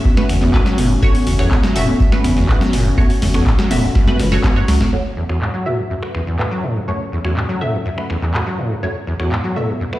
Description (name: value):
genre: acid house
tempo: 123 BPM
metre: 4/4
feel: straight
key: F# minor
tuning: A4 = 441 Hz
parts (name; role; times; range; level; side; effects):
- dark analog pad; sustained chords; 0.0-10.0 s; F#3 to A4; -24 LUFS; left 2 dB; chorus, vintage 12-bit sampler grit, sidechain pumping
- acid bass, saw; riff; 0.0-9.8 s; F#1 to F#3; -21 LUFS; equal; tube saturation, ensemble chorus, sidechain pumping, tape echo
- electronic kick drum; drums; 0.0-4.9 s; none; -16 LUFS; equal; studio reverb
- booming analog drum machine; drums; 0.1-10.0 s; congas, finger snaps, handclaps, hi-hat, snare drum; -22 LUFS; equal; low-pass filter on snare, studio reverb, low-pass filter on perc, low-pass filter on hats
- filtered dub chord stab; stabs; 0.2-10.0 s; A3 to E5; -24 LUFS; right 1 dB; phaser, ensemble chorus, tape echo
- warm sub bass; bass; 0.3-4.9 s; E1 to C#2; -18 LUFS; equal; sidechain pumping
room: light reverb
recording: played on a big sound system in a bare room, stone room reverb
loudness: -14 LUFS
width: side -16 dB against mid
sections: 0.0-4.9 A section; 4.9-10.0 B section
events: drop 0.0-4.9; drum fill 4.0-4.9; band accent 4.8; filter sweep on acid bass 4.9-10.0; filter sweep on analog synth pad 4.9-10.0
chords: 0.0 F#m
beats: 0.05 0.54 | 1.02 1.51 2.00 2.49 | 2.98 3.46 3.95 4.44 | 4.93 5.42 5.90 6.39 | 6.88 7.37 7.85 8.34 | 8.83 9.32 9.80